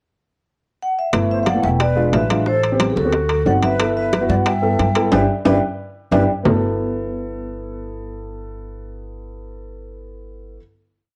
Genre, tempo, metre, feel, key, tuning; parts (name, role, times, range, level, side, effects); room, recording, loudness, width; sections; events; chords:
Afro-Cuban jazz; 181 BPM; 4/4; straight; G major; A4 = 444 Hz
vibraphone with medium mallets; melody; 0.8-6.2 s; Ab4 to G5; -23 LUFS; equal; cassette tape
dark grand piano; accompaniment; 1.1-10.6 s; G#3 to A4; -26 LUFS; equal; cassette tape
upright bass; bass; 1.1-10.6 s; E1 to G2; -26 LUFS; equal
bongos; percussion; 1.1-6.5 s; -28 LUFS; equal
congas; percussion; 1.1-6.5 s; -28 LUFS; equal
timbales; percussion; 1.1-6.5 s; -25 LUFS; equal
breathy jazz flute; second line; 1.3-6.2 s; E4 to E5; -30 LUFS; equal; cassette tape
moderate spring reverb, RT60 1.1 s, studio reverb; home recording on cassette; -18 LUFS; mono
0.0-1.1 pickup bar; 1.1-6.4 A section; 6.4-9.1 final chord
band accent 5.1-6.4; drum fill 5.6-6.4
0.0 N.C.; 1.1 G69; 1.8 E7b9; 2.5 Am7; 3.1 D7b9; 3.8 G69